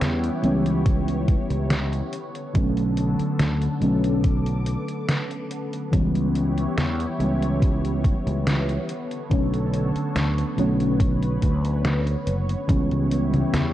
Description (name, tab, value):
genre	vaporwave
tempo	71 BPM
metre	4/4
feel	straight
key	B minor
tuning	A4 = 439 Hz
part	mellow FM electric piano	accompaniment	0.0-13.7 s	D3 to C#4	-25 LUFS	equal	phaser, analog chorus, analog delay
part	lush unison pad	sustained chords	0.0-13.7 s	D3 to D6	-31 LUFS	equal	chorus, phaser
part	sustaining fretless electric bass	bass	0.0-13.7 s	F#1 to E2	-25 LUFS	equal	none
part	detuned 8-bit digital drum machine	drums	0.0-13.7 s	congas, hi-hat, snare drum	-27 LUFS	equal	vintage 12-bit sampler grit
part	electronic kick drum	drums	0.9-12.9 s	none	-21 LUFS	equal	vintage 12-bit sampler grit
room	light reverb, digital ambience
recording	dark, warm production, cassette tape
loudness	-20 LUFS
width	side -13 dB against mid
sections	0.0-13.7 A section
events	none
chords	0.0 C#m7b5; 2.1 Bm9; 5.9 C#m7b5; 8.9 Bm9; 12.7 C#m7b5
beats	0.01 0.86 1.71 | 2.55 3.40 4.24 5.08 | 5.93 6.78 7.62 8.46 | 9.31 10.16 11.00 11.85 | 12.69 13.54